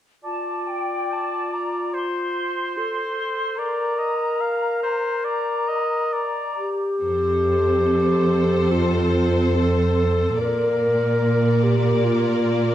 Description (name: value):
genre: cinematic, emotional film score for orchestra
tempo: 72 BPM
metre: 4/4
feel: rubato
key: F mixolydian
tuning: A4 = 441 Hz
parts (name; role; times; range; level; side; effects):
- clear oboe; second line; 0.2-6.7 s; C5 to F5; -27 LUFS; right 1 dB; none
- dark clarinet; second line; 0.2-12.7 s; F4 to Bb4; -23 LUFS; left 1 dB; none
- small flute group; second line; 0.2-6.7 s; G5 to C6; -28 LUFS; left 2 dB; none
- rich studio violin section; melody; 7.0-12.7 s; C5 to D5; -29 LUFS; left 4 dB; none
- rich studio viola section; accompaniment; 7.0-12.7 s; Bb3 to Bb4; -25 LUFS; right 1 dB; none
- rich studio cello section; bass; 7.0-12.7 s; F2 to Bb2; -21 LUFS; right 2 dB; none
room: wet recital hall reverb, RT60 1.6 s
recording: dark, warm production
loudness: -19 LUFS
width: side -11 dB against mid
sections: 0.2-7.0 A section; 7.0-12.7 B section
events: none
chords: 0.2 F; 3.6 Bb; 7.0 F; 10.4 Bb